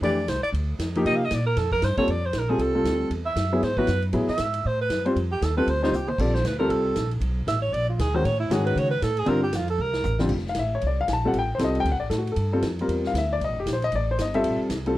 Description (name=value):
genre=jazz, small-group swing and bop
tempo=233 BPM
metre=4/4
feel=swing 60% on 8ths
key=F major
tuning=A4 = 441 Hz
part: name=breathy alto saxophone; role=second line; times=0.0-10.2 s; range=Eb4 to F5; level=-26 LUFS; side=right 2 dB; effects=none
part: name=warm concert grand piano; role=accompaniment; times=0.0-15.0 s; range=F2 to A5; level=-24 LUFS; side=left 2 dB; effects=none
part: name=upright bass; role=bass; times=0.0-15.0 s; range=F1 to C#3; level=-27 LUFS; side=equal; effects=none
part: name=vintage drum kit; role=drums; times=0.0-14.9 s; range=crash cymbal, hi-hat, kick drum, ride cymbal, snare drum, toms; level=-34 LUFS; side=equal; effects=none
room=small room ambience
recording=none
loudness=-22 LUFS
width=side -15 dB against mid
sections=0.0-2.1 A section; 2.1-10.3 A section; 10.3-15.0 A section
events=alto saxophone solo 0.0-10.3; drum fill 5.9, 9.8-10.3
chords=0.0 F6; 1.1 Cm7; 1.6 Fadd9; 2.1 Bb69; 3.1 Eadd9; 4.1 Asus2; 5.2 F7sus2; 6.2 Bb69; 7.2 Aadd9; 7.7 Bb7; 8.2 Amaj7; 9.3 G7sus4; 9.8 Csus2; 10.3 F; 11.3 Am7b5; 11.9 N.C.; 12.4 Gm9; 13.4 Fadd9; 14.4 Bbmaj7sus2